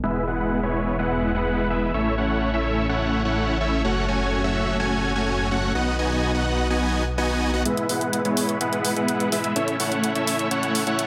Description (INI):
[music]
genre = EDM, festival progressive house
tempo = 126 BPM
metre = 4/4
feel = straight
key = E major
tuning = A4 = 440 Hz
[part]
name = dense compressed supersaw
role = riff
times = 0.0-11.1 s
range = G#3 to G#5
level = -24 LUFS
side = equal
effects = low-pass filter, dub echo
[part]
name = detuned saw bass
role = bass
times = 0.0-7.6 s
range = E1 to B1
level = -29 LUFS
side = equal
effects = chorus
[part]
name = electronic hi-hat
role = drums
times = 7.7-11.1 s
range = none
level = -30 LUFS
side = equal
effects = overdrive, high-pass filter on hats, low-pass filter on hats, high-pass filter on room, low-pass filter on room
[sound]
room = moderate lush hall reverb, RT60 1.6 s, digital ambience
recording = none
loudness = -23 LUFS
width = mono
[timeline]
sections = 0.0-7.7 A section; 7.7-11.1 B section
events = filter sweep on supersaw synth 0.0-7.7, 7.7-11.1; build-up 7.7-11.1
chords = 0.0 E; 1.9 A; 3.8 F#m; 5.8 B; 7.7 E; 9.6 A